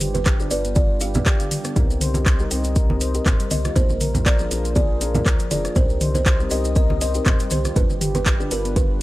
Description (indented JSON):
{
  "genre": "afro house",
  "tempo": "120 BPM",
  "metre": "4/4",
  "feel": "swing 55% on 16ths",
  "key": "C minor",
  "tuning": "A4 = 441 Hz",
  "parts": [
    { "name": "buzzing kalimba", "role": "melody", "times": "0.0-9.0 s", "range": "Bb4 to F5", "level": "-28 LUFS", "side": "right 1 dB", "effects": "tape echo" },
    { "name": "dark analog pad", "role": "sustained chords", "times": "0.0-9.0 s", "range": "G3 to Eb5", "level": "-33 LUFS", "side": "equal", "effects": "chorus, vintage 12-bit sampler grit, sidechain pumping" },
    { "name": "handpan", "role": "arpeggios", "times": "0.0-8.8 s", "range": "D3 to C5", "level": "-30 LUFS", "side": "left 1 dB", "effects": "sidechain pumping, tape echo" },
    { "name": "warm sub bass", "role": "bass", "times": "0.0-9.0 s", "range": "F1 to D2", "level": "-26 LUFS", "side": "equal", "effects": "tube saturation, sidechain pumping" },
    { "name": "afro-pop drum kit", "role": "drums", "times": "0.0-8.9 s", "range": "handclaps, hi-hat, rim click, toms", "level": "-25 LUFS", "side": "equal", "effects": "none" },
    { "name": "maracas", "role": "percussion", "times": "0.0-8.9 s", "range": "none", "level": "-34 LUFS", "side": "left 3 dB", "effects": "none" },
    { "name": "congas", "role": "percussion", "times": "0.2-8.9 s", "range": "none", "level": "-26 LUFS", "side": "right 1 dB", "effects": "none" },
    { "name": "electronic kick drum", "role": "drums", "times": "0.3-8.9 s", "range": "none", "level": "-19 LUFS", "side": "equal", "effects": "none" },
    { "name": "felt-muted upright piano", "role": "stabs", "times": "0.4-9.0 s", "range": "C4 to B4", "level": "-30 LUFS", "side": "left 2 dB", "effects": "sidechain pumping, tape echo" }
  ],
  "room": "small room ambience",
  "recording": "dry, gritty hardware recording",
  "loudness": "-17 LUFS",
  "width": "side -17 dB against mid",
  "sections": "0.0-9.0 A section",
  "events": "none",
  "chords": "0.0 G7; 1.8 Cm7; 3.8 Bb7; 5.8 Cm7; 7.8 G7"
}